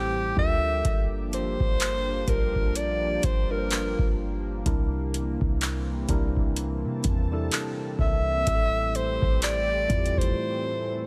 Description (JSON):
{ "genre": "contemporary R&B", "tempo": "63 BPM", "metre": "4/4", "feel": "swing 58% on 16ths", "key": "unclear", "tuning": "A4 = 439 Hz", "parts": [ { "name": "clear alto saxophone", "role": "melody", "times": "0.0-11.1 s", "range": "G4 to E5", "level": "-30 LUFS", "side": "equal", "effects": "delay" }, { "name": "tine electric piano", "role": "accompaniment", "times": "0.0-11.1 s", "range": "A2 to C5", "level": "-35 LUFS", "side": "equal", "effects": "phaser" }, { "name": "lush unison pad", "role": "sustained chords", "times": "0.0-11.1 s", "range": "E3 to A5", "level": "-38 LUFS", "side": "equal", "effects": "chorus" }, { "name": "clean 808-style bass", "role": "bass", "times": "0.0-10.4 s", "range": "G1 to C3", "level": "-32 LUFS", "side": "equal", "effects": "none" }, { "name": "booming analog drum machine", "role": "drums", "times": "0.4-10.4 s", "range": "handclaps, hi-hat, kick drum", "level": "-29 LUFS", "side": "equal", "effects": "none" } ], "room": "digital ambience", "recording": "none", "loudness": "-26 LUFS", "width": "mono", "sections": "0.0-11.1 A section", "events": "break 10.4-11.1", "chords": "0.4 Gm7; 4.7 C7; 8.5 Am7" }